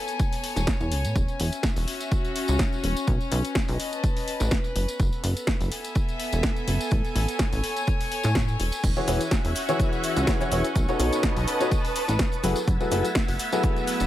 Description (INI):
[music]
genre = piano house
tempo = 125 BPM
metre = 4/4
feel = swing 54% on 16ths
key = E major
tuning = A4 = 438 Hz
[part]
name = rich chamber string section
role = texture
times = 0.0-14.1 s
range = A3 to A5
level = -31 LUFS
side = left 1 dB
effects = sidechain pumping
[part]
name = punchy analog drum machine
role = drums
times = 0.1-14.1 s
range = cabasa, crash cymbal, hi-hat, snare drum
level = -31 LUFS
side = equal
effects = overdrive
[part]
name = tambourine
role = percussion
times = 0.1-14.1 s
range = none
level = -40 LUFS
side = equal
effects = none
[part]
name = electronic kick drum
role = drums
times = 0.2-13.7 s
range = none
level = -25 LUFS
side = equal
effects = overdrive
[part]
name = plucky analog bass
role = bass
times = 0.6-14.1 s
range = E1 to A2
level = -25 LUFS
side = equal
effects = tube saturation, sidechain pumping
[part]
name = analog string pad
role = sustained chords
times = 8.8-14.1 s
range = B4 to B6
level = -32 LUFS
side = right 1 dB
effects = ensemble chorus, sidechain pumping
[part]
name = clear upright piano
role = riff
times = 9.0-14.1 s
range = B2 to C#5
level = -27 LUFS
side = left 2 dB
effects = sidechain pumping, tape echo
[sound]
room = little or no reverb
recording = none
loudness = -22 LUFS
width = side -13 dB against mid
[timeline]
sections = 0.0-14.1 A section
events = none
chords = 0.0 Amaj9; 1.2 E69; 3.1 B9; 4.8 F#m11; 6.9 Amaj9; 8.8 E69; 10.8 B9; 12.4 F#m11